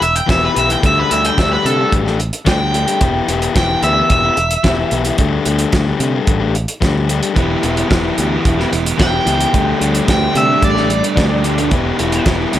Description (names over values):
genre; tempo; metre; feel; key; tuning
indie rock; 110 BPM; 4/4; straight; E minor; A4 = 438 Hz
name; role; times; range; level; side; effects
overdriven semi-hollow guitar; melody; 0.0-5.7, 9.0-12.2 s; A4 to G5; -17 LUFS; equal; analog delay
crunchy overdriven guitar; riff; 0.0-12.6 s; D3 to G4; -18 LUFS; left 6 dB; none
picked electric bass; bass; 0.0-12.6 s; E1 to C3; -20 LUFS; right 1 dB; none
cloth-damped thuddy drum kit; drums; 0.0-12.6 s; hi-hat, kick drum, snare drum; -18 LUFS; right 1 dB; none
crunchy overdriven guitar; riff; 7.4-12.6 s; D3 to G4; -19 LUFS; right 6 dB; wide subtle chorus
room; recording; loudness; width
moderate small room reverb, RT60 0.5 s; none; -12 LUFS; side -12 dB against mid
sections
0.0-12.6 A section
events
overdriven electric guitar solo 0.0-12.6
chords
0.0 Em; 0.8 Dsus4; 3.0 Em; 5.2 Dsus4; 7.4 Em; 9.5 Dsus4; 11.7 Em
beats
0.29 | 0.84 1.38 1.92 2.47 | 3.01 3.56 4.10 4.64 | 5.19 5.73 6.28 6.82 | 7.37 7.91 8.46 9.00 | 9.54 10.09 10.63 11.18 | 11.72 12.27